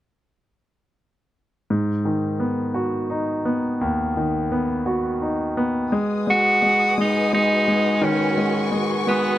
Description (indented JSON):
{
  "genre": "pop",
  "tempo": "57 BPM (dotted quarters)",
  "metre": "6/8",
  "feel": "straight",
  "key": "G# minor",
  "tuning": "A4 = 439 Hz",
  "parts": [
    { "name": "bright concert grand piano", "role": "accompaniment", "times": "1.7-9.4 s", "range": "D#2 to F#4", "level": "-21 LUFS", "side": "equal", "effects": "none" },
    { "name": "warm studio string section", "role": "sustained chords", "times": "5.9-9.4 s", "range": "F#4 to D#6", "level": "-26 LUFS", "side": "equal", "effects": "none" },
    { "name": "bright tenor saxophone", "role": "melody", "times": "6.3-9.4 s", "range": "B3 to F#4", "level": "-19 LUFS", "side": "equal", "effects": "none" }
  ],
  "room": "light reverb",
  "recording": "none",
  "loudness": "-19 LUFS",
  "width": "side -14 dB against mid",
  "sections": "1.7-5.9 A section; 5.9-9.4 B section",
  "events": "none",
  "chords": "1.7 G#m7"
}